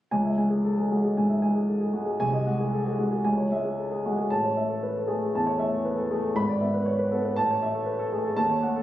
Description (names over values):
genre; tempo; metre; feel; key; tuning
classical, virtuoso piano study; 116 BPM; 4/4; rubato; C# minor; A4 = 440 Hz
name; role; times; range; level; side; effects
warm grand piano; solo; 0.1-8.8 s; G#1 to B5; -23 LUFS; equal; none
room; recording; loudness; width
moderate studio ambience, RT60 0.4 s; recorded on a phone in the room, studio reverb; -23 LUFS; side -13 dB against mid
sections
0.1-8.8 A section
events
none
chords
0.1 C#m; 2.2 G#7/B#; 3.3 C#m; 4.3 A; 6.4 E7/G#; 7.4 A